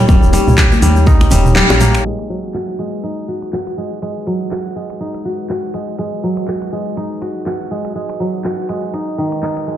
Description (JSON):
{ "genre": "afro house", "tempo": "122 BPM", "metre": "4/4", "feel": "swing 57% on 16ths", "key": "G# minor", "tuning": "A4 = 440 Hz", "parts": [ { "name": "warm analog pad", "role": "sustained chords", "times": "0.0-9.8 s", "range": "G#3 to C#5", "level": "-25 LUFS", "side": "left 1 dB", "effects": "chorus, sidechain pumping" }, { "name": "kora", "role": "arpeggios", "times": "0.0-9.8 s", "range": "D#3 to G4", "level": "-19 LUFS", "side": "right 1 dB", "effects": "sidechain pumping, low-pass filter, tape echo" }, { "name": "woody FM bass", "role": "bass", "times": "0.1-2.0 s", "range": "D#1 to D#2", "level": "-13 LUFS", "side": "equal", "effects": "sidechain pumping" }, { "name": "electronic kick drum", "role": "drums", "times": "0.1-1.2 s", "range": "none", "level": "-10 LUFS", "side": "equal", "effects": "none" }, { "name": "bongos", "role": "percussion", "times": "0.1-1.9 s", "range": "none", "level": "-22 LUFS", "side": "left 1 dB", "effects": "none" }, { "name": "congas", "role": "percussion", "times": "0.1-1.9 s", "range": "none", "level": "-21 LUFS", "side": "left 2 dB", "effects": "none" }, { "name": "egg shaker", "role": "percussion", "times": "0.1-9.8 s", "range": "none", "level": "-30 LUFS", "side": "left 3 dB", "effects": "none" }, { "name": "afro-pop drum kit", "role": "drums", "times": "0.3-9.7 s", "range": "finger snaps, handclaps, hi-hat, toms", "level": "-18 LUFS", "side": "right 1 dB", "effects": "low-pass filter on hats, low-pass filter on toms, low-pass filter on snare" } ], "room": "moderate lush hall reverb, RT60 1.9 s, small room ambience", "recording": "played on a big sound system in a bare room, large studio reverb, low-pass filter", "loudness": "-14 LUFS", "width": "side -11 dB against mid", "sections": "0.0-2.1 A section; 2.1-9.8 B section", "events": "kick drops out 1.6-2.1; band accent 1.6; filter sweep on kora 2.1-9.8; filter sweep on analog synth pad 2.1-9.8; filter sweep 2.1-9.8", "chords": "0.0 D#7; 2.1 G#m7" }